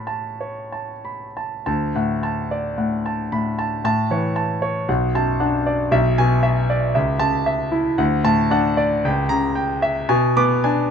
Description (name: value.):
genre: classical, romantic character piece for solo piano.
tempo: 57 BPM.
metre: 2/4.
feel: uneven beats, rubato.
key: D major.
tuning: A4 = 439 Hz.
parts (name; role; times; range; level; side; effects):
clear concert grand piano; solo; 0.0-10.9 s; B1 to D6; -18 LUFS; equal; none.
room: light reverb.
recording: dark, warm production.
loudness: -18 LUFS.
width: side -7 dB against mid.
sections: 0.0-1.7 A section; 1.7-10.9 B section.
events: none.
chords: 0.0 A; 1.7 D; 3.8 A; 4.9 Bm7; 5.9 E7/B; 7.0 A/C#; 8.0 D; 9.0 C#dim7; 10.1 E7/B (rootless).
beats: 0.40 | 1.67 2.79 | 3.84 4.89 | 5.93 6.95 | 8.00 9.04 | 10.09.